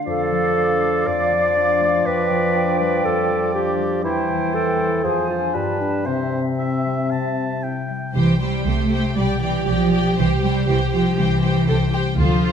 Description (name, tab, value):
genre	classical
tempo	120 BPM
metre	4/4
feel	straight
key	C major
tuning	A4 = 441 Hz
part	mellow hollow flute section	second line	0.0-7.9 s	E5 to A5	-27 LUFS	equal	none
part	concert harp	arpeggios	0.0-12.5 s	E2 to C5	-25 LUFS	left 8 dB	none
part	clear oboe	second line	0.1-8.2 s	B4 to A5	-29 LUFS	right 2 dB	none
part	warm clarinet	second line	0.1-7.9 s	C4 to D5	-21 LUFS	equal	none
part	warm bassoon	accompaniment	0.1-7.9 s	C3 to G3	-25 LUFS	right 2 dB	none
part	rich symphonic violin section	melody	8.2-12.5 s	C5 to G5	-31 LUFS	left 2 dB	none
part	bright symphonic viola section	accompaniment	8.2-12.5 s	F4 to D5	-26 LUFS	right 2 dB	none
part	dark symphonic double bass section	bass	8.2-12.5 s	B1 to D2	-23 LUFS	right 3 dB	none
part	warm symphonic cello section	bass	8.2-12.5 s	E3 to A3	-20 LUFS	right 2 dB	none
part	warm studio violin section	second line	9.2-12.5 s	F4 to A4	-26 LUFS	right 2 dB	none
room	moderate scoring stage reverb, RT60 2.0 s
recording	none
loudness	-17 LUFS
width	side -7 dB against mid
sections	0.0-8.2 A section; 8.2-12.5 A section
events	none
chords	0.1 Dm/F; 2.1 G7/F; 4.0 C/E; 5.0 Dm7b5/F; 5.5 G9; 6.1 C; 9.2 G/B; 10.2 C